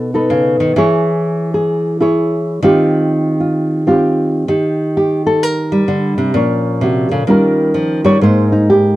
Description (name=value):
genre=solo jazz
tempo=129 BPM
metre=4/4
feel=swing 65% on 8ths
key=Eb major from 4.5 s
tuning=A4 = 442 Hz
part: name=nylon-string guitar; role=solo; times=0.0-9.0 s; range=Ab2 to C#5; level=-12 LUFS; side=equal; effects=none
room=light reverb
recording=dry, close 1970s-style studio recording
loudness=-12 LUFS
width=side -16 dB against mid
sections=0.0-4.5 A section; 4.5-9.0 B section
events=nylon-string guitar solo 4.5-9.0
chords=0.0 B7; 0.8 E6; 2.6 Eb69; 4.5 Ebmaj7; 6.3 Bbm; 7.3 Eb9; 8.2 Abadd9